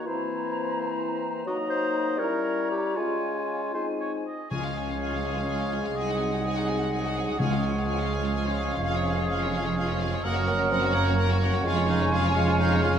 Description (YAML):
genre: quick classical-period movement for symphony orchestra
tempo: 84 BPM (dotted quarters)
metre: 6/8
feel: rubato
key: Db major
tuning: A4 = 440 Hz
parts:
  - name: large flute ensemble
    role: second line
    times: 0.0-13.0 s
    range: F5 to Bb5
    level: -35 LUFS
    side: right 1 dB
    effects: none
  - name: warm clarinet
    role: second line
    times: 0.0-12.9 s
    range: Eb4 to C5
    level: -34 LUFS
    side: left 2 dB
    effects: none
  - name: warm oboe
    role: second line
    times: 0.0-13.0 s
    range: C5 to F5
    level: -35 LUFS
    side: right 1 dB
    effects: none
  - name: mellow bassoon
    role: accompaniment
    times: 0.0-13.0 s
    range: E3 to Db4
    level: -33 LUFS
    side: right 1 dB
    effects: none
  - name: warm French horn section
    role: sustained chords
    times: 0.0-13.0 s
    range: F3 to F4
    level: -33 LUFS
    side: left 5 dB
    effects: none
  - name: rich chamber violin section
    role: melody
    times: 4.5-13.0 s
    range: Db5 to Ab5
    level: -35 LUFS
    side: left 2 dB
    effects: none
  - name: clear chamber violin section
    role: second line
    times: 4.5-13.0 s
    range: F4 to Bb4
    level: -37 LUFS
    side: left 5 dB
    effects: none
  - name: rich chamber viola section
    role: accompaniment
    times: 4.5-13.0 s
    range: Bb3 to F4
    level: -35 LUFS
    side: right 3 dB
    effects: none
  - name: clear trumpet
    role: stabs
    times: 4.5-13.0 s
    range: Ab4 to Db5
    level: -34 LUFS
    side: right 2 dB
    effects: none
  - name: clear chamber double bass section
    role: bass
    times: 4.5-13.0 s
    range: F1 to Db2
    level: -31 LUFS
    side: right 2 dB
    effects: none
  - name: warm chamber cello section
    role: bass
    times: 4.5-13.0 s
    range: C2 to Gb2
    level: -29 LUFS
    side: right 3 dB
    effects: none
  - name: timpani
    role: percussion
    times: 4.5-5.2, 7.4-8.1 s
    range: Db3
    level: -31 LUFS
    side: left 3 dB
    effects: none
room: moderate scoring stage reverb, RT60 1.5 s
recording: none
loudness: -24 LUFS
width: side -8 dB against mid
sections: 0.0-4.5 A section; 4.5-13.0 B section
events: none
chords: 0.1 C7/E; 1.5 Ebm/Gb; 2.2 Gdim7; 3.0 Db/Ab; 3.7 Ab; 4.5 Db; 6.0 Ab7/C; 7.4 Db; 8.8 Db/F; 10.2 Gb; 11.7 Db/F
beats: | 0.07 0.77 | 1.47 2.19 | 2.96 3.74 | 4.51 5.23 | 5.95 6.67 | 7.39 8.11 | 8.83 9.54 | 10.25 10.95 | 11.65 12.36